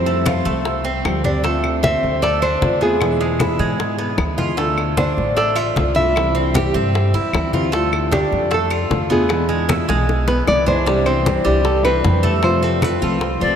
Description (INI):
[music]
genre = latin, Cuban son and guajira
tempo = 153 BPM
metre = 4/4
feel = straight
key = unclear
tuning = A4 = 440 Hz
[part]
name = nylon-string guitar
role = melody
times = 0.0-13.6 s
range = G4 to E5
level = -22 LUFS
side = equal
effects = none
[part]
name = nylon-string guitar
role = accompaniment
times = 0.0-13.6 s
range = B2 to G4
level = -23 LUFS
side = left 2 dB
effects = none
[part]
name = Cuban tres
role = arpeggios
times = 0.0-13.6 s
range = G3 to G4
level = -21 LUFS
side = right 2 dB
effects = none
[part]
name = upright bass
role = bass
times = 0.0-13.6 s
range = A1 to G#2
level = -22 LUFS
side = equal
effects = none
[part]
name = congas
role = percussion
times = 0.1-13.6 s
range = none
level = -26 LUFS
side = left 1 dB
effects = none
[part]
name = bongos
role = percussion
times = 0.3-13.6 s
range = none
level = -28 LUFS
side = left 4 dB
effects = none
[part]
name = claves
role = percussion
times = 0.3-13.0 s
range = none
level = -33 LUFS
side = left 6 dB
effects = none
[part]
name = bright silver concert flute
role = second line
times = 13.4-13.6 s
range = D5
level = -18 LUFS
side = left 6 dB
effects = none
[sound]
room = wet cathedral reverb, RT60 6.5 s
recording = in a vast, echoing space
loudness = -15 LUFS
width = side -8 dB against mid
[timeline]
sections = 0.0-10.9 A section; 10.9-13.6 B section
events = drum fill 9.7-10.9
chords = 0.0 Fadd9; 1.4 Dm7; 3.0 E; 4.6 Dm; 6.2 C; 7.7 Dm; 9.3 E; 10.9 Cadd9; 12.4 F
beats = 0.26 0.66 1.05 | 1.44 1.83 2.23 2.62 | 3.01 3.41 3.80 4.19 | 4.59 4.98 5.37 5.76 | 6.16 6.55 6.94 7.34 | 7.73 8.12 8.51 8.91 | 9.30 9.69 10.08 10.47 | 10.87 11.26 11.65 12.04 | 12.43 12.83 13.22